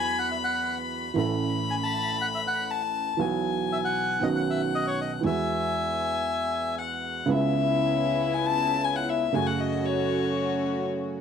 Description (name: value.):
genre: tango.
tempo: 118 BPM.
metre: 4/4.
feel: rubato.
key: E major, C# minor from 7.3 s.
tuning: A4 = 441 Hz.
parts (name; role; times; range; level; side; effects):
bandoneon; melody; 0.0-6.8 s; C#5 to A5; -29 LUFS; left 1 dB; none.
warm violin; second line; 0.0-10.9 s; C#5 to B5; -29 LUFS; left 9 dB; none.
warm baby grand piano; accompaniment; 0.0-11.2 s; A1 to A4; -28 LUFS; right 5 dB; none.
dark studio string section; stabs; 7.3-11.2 s; A3 to F#4; -30 LUFS; left 1 dB; none.
room: small room ambience.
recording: dry, close 1970s-style studio recording.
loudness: -24 LUFS.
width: side -7 dB against mid.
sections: 0.0-7.3 A section; 7.3-11.2 B section.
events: violin solo 7.3-11.2.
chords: 0.0 Esus2; 1.2 A; 3.2 Bsus4; 4.2 Badd9; 5.2 Eadd9; 7.3 C#m7; 9.3 F#m.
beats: 0.16 0.67 | 1.17 1.68 2.19 2.70 | 3.21 3.71 4.22 4.73 | 5.24 5.76 6.27 6.79 | 7.30 7.82 8.33 8.84 | 9.35 9.86 10.37 10.88.